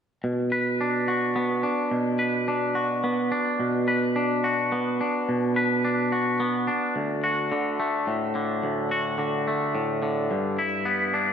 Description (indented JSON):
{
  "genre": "rock",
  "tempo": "107 BPM",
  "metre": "3/4",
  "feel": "straight",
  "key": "unclear",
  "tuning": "A4 = 438 Hz",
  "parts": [
    { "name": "twangy electric guitar", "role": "arpeggios", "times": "0.2-11.3 s", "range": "D2 to B4", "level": "-23 LUFS", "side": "equal", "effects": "slapback echo" }
  ],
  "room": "wet lush hall reverb, RT60 2.1 s",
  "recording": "none",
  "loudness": "-23 LUFS",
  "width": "side -7 dB against mid",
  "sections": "0.3-11.3 A section",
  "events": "none",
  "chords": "0.3 Bm; 7.0 D; 10.3 G6"
}